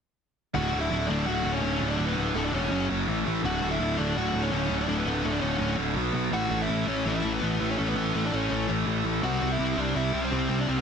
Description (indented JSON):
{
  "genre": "punk",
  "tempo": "166 BPM",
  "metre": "4/4",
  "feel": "straight",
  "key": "D major",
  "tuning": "A4 = 439 Hz",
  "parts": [
    { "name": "smooth overdriven lead guitar", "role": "melody", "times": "0.5-10.8 s", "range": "A3 to F#5", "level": "-31 LUFS", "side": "left 2 dB", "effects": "none" },
    { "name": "biting overdriven guitar", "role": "riff", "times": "0.5-10.8 s", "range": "D2 to C4", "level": "-30 LUFS", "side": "left 14 dB", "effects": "none" },
    { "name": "distorted electric guitar", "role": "riff", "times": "0.5-10.8 s", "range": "D2 to C4", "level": "-30 LUFS", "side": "right 13 dB", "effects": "distortion" },
    { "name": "fuzz picked electric bass", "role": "bass", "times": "0.6-10.8 s", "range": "D1 to C2", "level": "-30 LUFS", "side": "equal", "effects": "overdrive" }
  ],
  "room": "light reverb",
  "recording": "dense, heavily limited modern master",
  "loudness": "-24 LUFS",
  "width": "side -6 dB against mid",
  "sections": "0.5-10.8 A section",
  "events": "none",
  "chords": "0.5 D; 2.7 F#5; 3.1 A5; 3.4 D; 6.0 B5; 6.3 A; 9.2 C",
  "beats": "| 0.54 0.90 1.26 1.62 | 1.98 2.34 2.71 3.07 | 3.43 3.79 4.15 4.51 | 4.88 5.24 5.60 5.96 | 6.33 6.69 7.05 7.41 | 7.78 8.14 8.50 8.86 | 9.22 9.59 9.95 10.31 | 10.67"
}